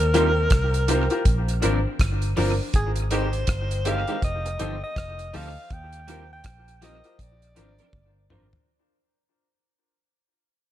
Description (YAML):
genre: lovers rock reggae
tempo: 81 BPM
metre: 4/4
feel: swing 61% on 16ths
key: Eb major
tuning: A4 = 438 Hz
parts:
  - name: warm alto saxophone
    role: melody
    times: 0.0-8.3 s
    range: Ab4 to G5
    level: -29 LUFS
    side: equal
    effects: tape echo
  - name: vintage muted fingered electric bass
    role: bass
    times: 0.0-8.5 s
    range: F1 to Eb2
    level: -25 LUFS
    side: equal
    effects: none
  - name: warm baby grand piano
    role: accompaniment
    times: 0.1-8.5 s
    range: D4 to C5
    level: -29 LUFS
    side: left 3 dB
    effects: tape echo
  - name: electric guitar through a small old amp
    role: stabs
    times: 0.1-8.5 s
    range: Eb3 to Bb4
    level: -30 LUFS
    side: right 3 dB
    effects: ensemble chorus
  - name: damped 70s drum kit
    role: drums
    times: 0.1-8.7 s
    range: hi-hat, kick drum, rim click, toms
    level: -25 LUFS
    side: equal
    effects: tape echo
room: light reverb, small room ambience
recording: none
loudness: -21 LUFS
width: side -12 dB against mid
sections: 0.0-8.7 A section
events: fade-out 0.0-8.7; drum fill 7.9-8.7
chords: 0.0 Eb6; 1.3 Bbadd9; 2.7 Abmaj7; 4.2 F7; 5.7 Eb6; 7.2 Bbadd9